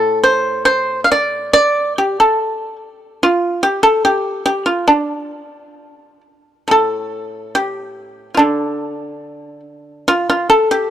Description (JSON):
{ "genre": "chinese traditional, Chinese solo plucked strings", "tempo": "64-73 BPM", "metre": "2/4", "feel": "rubato", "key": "D yu mode", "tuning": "A4 = 441 Hz", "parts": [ { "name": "pipa", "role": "solo", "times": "0.0-10.9 s", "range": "A2 to F5", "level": "-13 LUFS", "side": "equal", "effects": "none" } ], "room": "light reverb, small room ambience", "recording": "dry, close 1970s-style studio recording", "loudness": "-13 LUFS", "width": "side -10 dB against mid", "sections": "0.0-6.7 A section; 6.7-10.9 B section", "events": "none", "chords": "none" }